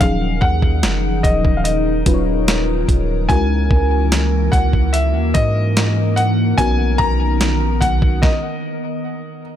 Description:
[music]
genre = contemporary R&B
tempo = 73 BPM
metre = 4/4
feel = straight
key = Eb minor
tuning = A4 = 440 Hz
[part]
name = warm concert grand piano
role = melody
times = 0.0-9.4 s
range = Eb5 to A#5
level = -22 LUFS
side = left 2 dB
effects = ping-pong delay
[part]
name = FM electric piano with soft pad layer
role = accompaniment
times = 0.0-8.2 s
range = F3 to Db5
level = -23 LUFS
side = left 2 dB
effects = chorus
[part]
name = glassy FM pad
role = sustained chords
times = 0.0-8.2 s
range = Eb3 to Bb4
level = -23 LUFS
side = left 1 dB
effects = ensemble chorus, built-in reverb
[part]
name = long sustained 808-style bass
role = bass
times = 0.0-8.2 s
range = Eb1 to Ab2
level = -18 LUFS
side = equal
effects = none
[part]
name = dusty soul sampler-style drum kit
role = drums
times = 0.0-8.4 s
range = hi-hat, kick drum, snare drum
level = -18 LUFS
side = equal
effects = none
[sound]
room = digital ambience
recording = none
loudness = -14 LUFS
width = side -10 dB against mid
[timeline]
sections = 0.0-9.6 A section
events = stop 8.2-9.6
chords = 0.0 Ebm7; 3.3 Gb7/Db; 6.6 Bmaj7

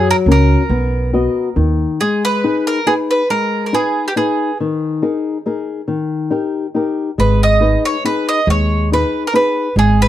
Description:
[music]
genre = italian folk, Italian serenade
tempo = 139 BPM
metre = 3/4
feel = swing 54% on 8ths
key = G# harmonic minor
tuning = A4 = 440 Hz
[part]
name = bowl-back mandolin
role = melody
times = 0.0-4.6, 7.2-10.1 s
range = G4 to D#5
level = -17 LUFS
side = right 2 dB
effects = none
[part]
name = flamenco guitar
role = accompaniment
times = 0.0-10.1 s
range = D#3 to D#5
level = -17 LUFS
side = left 3 dB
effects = none
[part]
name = upright bass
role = bass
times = 0.0-1.8, 7.2-10.1 s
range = G#1 to F#2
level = -14 LUFS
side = right 1 dB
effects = none
[sound]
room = studio reverb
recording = dry, close 1970s-style studio recording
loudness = -14 LUFS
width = side -12 dB against mid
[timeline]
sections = 0.0-2.0 A section; 2.0-10.1 B section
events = none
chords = 0.0 F#; 0.7 B; 1.6 N.C.; 2.0 G#m; 4.6 D#sus4; 5.9 D#; 7.2 G#m

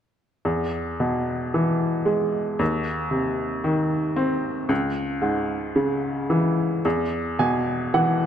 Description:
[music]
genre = celtic folk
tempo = 56 BPM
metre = 4/4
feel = rubato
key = E major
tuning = A4 = 441 Hz
[part]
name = bright upright piano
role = accompaniment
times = 0.5-8.3 s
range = C#2 to G#5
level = -21 LUFS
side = equal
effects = none
[sound]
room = moderate concert hall reverb, RT60 2.1 s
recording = none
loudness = -22 LUFS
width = side -9 dB against mid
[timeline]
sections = 0.5-8.3 A section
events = upright piano fill 6.9-8.3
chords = 0.5 E; 2.6 Cm/Eb; 4.7 C#m; 6.9 E

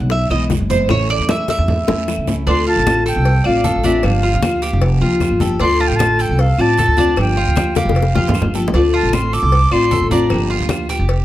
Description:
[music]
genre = latin, Cuban son and guajira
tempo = 153 BPM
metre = 4/4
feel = straight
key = D minor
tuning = A4 = 440 Hz
[part]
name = nylon-string guitar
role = accompaniment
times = 0.0-11.1 s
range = D3 to G4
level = -19 LUFS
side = left 2 dB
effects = none
[part]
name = Cuban tres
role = arpeggios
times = 0.0-11.2 s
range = D4 to E5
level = -22 LUFS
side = right 3 dB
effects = slapback echo
[part]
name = upright bass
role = bass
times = 0.0-11.2 s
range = F1 to E2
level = -18 LUFS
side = right 1 dB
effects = none
[part]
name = bongos and cowbell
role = percussion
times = 0.1-11.2 s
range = none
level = -25 LUFS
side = left 5 dB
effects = none
[part]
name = congas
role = percussion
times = 0.1-11.2 s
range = none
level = -21 LUFS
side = left 1 dB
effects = none
[part]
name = guiro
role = percussion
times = 0.1-11.2 s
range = none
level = -32 LUFS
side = right 7 dB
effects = none
[part]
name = claves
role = percussion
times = 0.3-10.9 s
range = none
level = -31 LUFS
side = left 4 dB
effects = none
[part]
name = concert flute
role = melody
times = 2.5-10.5 s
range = E5 to D6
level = -19 LUFS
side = right 1 dB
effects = none
[sound]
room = moderate small room reverb, RT60 0.5 s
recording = none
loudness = -13 LUFS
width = side -14 dB against mid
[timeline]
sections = 0.0-2.5 A section; 2.5-11.2 B section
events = Cuban tres solo 0.0-2.5; drum fill 0.9-2.5, 7.8-8.7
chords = 0.0 E; 0.9 A; 2.5 Dm7; 4.0 Gm7; 5.6 Dm7; 7.2 Gm7; 8.7 Dm7; 10.3 Gm7

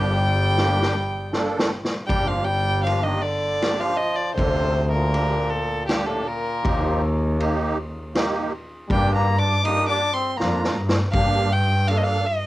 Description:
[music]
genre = klezmer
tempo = 80 BPM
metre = 3/4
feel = straight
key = G minor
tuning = A4 = 439 Hz
[part]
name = rich violin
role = melody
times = 0.0-12.5 s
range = G4 to Eb6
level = -25 LUFS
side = equal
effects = cassette tape
[part]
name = brilliant trombone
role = second line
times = 0.0-10.8 s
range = G2 to Eb4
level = -26 LUFS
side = left 1 dB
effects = cassette tape
[part]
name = musette accordion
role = accompaniment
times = 0.0-12.3 s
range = Bb3 to A4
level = -27 LUFS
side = right 2 dB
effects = cassette tape
[part]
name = rich double bass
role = bass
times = 0.0-12.5 s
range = G1 to G2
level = -24 LUFS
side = equal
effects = none
[part]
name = street-band drum kit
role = drums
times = 0.6-12.1 s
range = kick drum, ride cymbal, snare drum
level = -28 LUFS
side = equal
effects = cassette tape
[sound]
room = light reverb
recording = home recording on cassette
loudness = -19 LUFS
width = side -16 dB against mid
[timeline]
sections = 0.0-2.1 A section; 2.1-11.1 B section; 11.1-12.5 C section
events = speeding up 0.0-12.5; drum fill 0.6-2.1, 10.4-11.1; violin solo 2.1-11.1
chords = 0.0 Gm; 6.6 Eb; 8.9 Gm

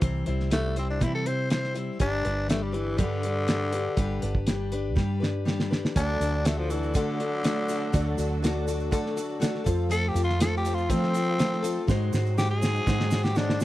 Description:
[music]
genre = folk rock and heartland rock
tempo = 122 BPM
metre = 4/4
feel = straight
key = unclear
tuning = A4 = 441 Hz
[part]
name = picked plugged-in acoustic archtop guitar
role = accompaniment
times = 0.0-13.6 s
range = C3 to C5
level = -31 LUFS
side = left 4 dB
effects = none
[part]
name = hollow-body short-scale fingered electric bass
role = bass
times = 0.0-13.6 s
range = G1 to F3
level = -29 LUFS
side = right 1 dB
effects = none
[part]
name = cloth-damped thuddy drum kit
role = drums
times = 0.0-13.6 s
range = hi-hat, kick drum, snare drum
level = -27 LUFS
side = right 1 dB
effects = none
[part]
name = growling tenor saxophone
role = melody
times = 0.5-13.6 s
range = D3 to C5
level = -29 LUFS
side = left 1 dB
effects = none
[part]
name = dark upright piano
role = accompaniment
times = 6.0-13.6 s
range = F4 to D5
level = -37 LUFS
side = right 5 dB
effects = none
[part]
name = muted studio string section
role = sustained chords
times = 6.0-13.6 s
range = F3 to F#4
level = -38 LUFS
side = right 3 dB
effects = none
[part]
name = tube shaker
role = percussion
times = 6.0-13.6 s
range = none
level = -46 LUFS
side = right 7 dB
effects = none
[sound]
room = little or no reverb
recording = dry, close 1970s-style studio recording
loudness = -24 LUFS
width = side -15 dB against mid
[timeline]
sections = 0.0-13.6 A section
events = tenor saxophone solo 0.0-13.6; drum fill 5.0-6.0, 11.9-13.6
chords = 0.0 C; 2.0 G; 6.0 D; 9.7 F; 11.9 Ab7

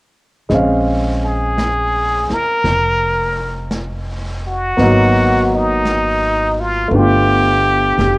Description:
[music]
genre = jazz ballad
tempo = 56 BPM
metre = 4/4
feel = swing 68% on 8ths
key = Bb minor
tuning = A4 = 441 Hz
[part]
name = warm concert grand piano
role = accompaniment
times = 0.5-8.2 s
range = Gb3 to F5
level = -17 LUFS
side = equal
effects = none
[part]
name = upright bass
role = bass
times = 0.5-8.2 s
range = F1 to Bb1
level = -19 LUFS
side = equal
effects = none
[part]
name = vintage brush drum kit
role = drums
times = 0.5-8.2 s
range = brushed snare drum, hi-hat, snare drum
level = -28 LUFS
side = equal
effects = cassette tape
[part]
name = trumpet with plunger mute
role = melody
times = 1.3-8.2 s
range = Eb4 to Bb4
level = -16 LUFS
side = equal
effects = cassette tape
[sound]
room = light reverb, studio reverb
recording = home recording on cassette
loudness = -13 LUFS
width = side -24 dB against mid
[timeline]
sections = 0.5-8.2 A section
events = none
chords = 0.5 Bbm9; 4.8 Abm7; 6.9 G9

